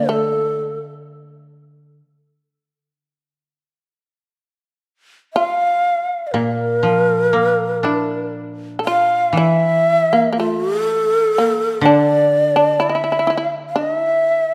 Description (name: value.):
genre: japanese traditional, Japanese chamber music.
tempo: 61 BPM.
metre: 4/4.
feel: uneven beats, rubato.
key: D hirajoshi.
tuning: A4 = 440 Hz.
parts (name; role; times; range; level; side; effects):
breathy long shakuhachi; melody; 0.0-14.5 s; A4 to F5; -19 LUFS; equal; none.
shamisen; second line; 0.0-14.5 s; A3 to A4; -23 LUFS; equal; none.
koto; accompaniment; 0.0-14.5 s; Bb2 to D4; -24 LUFS; equal; none.
room: moderate scoring stage reverb, RT60 2.0 s.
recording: dark, warm production.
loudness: -17 LUFS.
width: mono.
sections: 0.0-14.5 A section.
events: none.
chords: none.